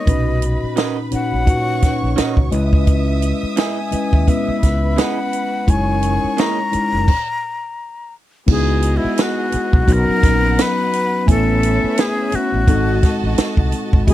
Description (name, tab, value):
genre	lush 1970s-style soul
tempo	86 BPM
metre	4/4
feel	swing 58% on 16ths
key	B major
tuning	A4 = 440 Hz
part	breathy bright jazz flute	melody	0.0-14.1 s	E4 to A#5	-21 LUFS	left 2 dB	none
part	warm studio violin section	second line	0.0-14.1 s	B3 to D#6	-29 LUFS	right 2 dB	none
part	mellow tine electric piano	accompaniment	0.0-14.1 s	A#2 to G#5	-20 LUFS	left 1 dB	analog chorus
part	overdriven fingered electric bass	bass	0.1-14.1 s	F#1 to D#2	-19 LUFS	equal	none
part	compact cocktail drum kit	drums	0.1-14.1 s	crash cymbal, hi-hat, kick drum, snare drum	-16 LUFS	right 1 dB	none
part	electric guitar through a small old amp	riff	0.8-6.6 s	A#3 to D#5	-23 LUFS	right 8 dB	vibrato effect
room	little or no reverb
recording	dry, close 1970s-style studio recording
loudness	-15 LUFS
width	side -14 dB against mid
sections	0.0-8.5 A section; 8.5-14.1 B section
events	stop 7.1-8.5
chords	0.1 Bmaj9; 2.5 C#m9; 5.7 F#13; 8.5 C#m11; 9.9 Bmaj7; 11.3 Amaj9; 12.7 G#7b9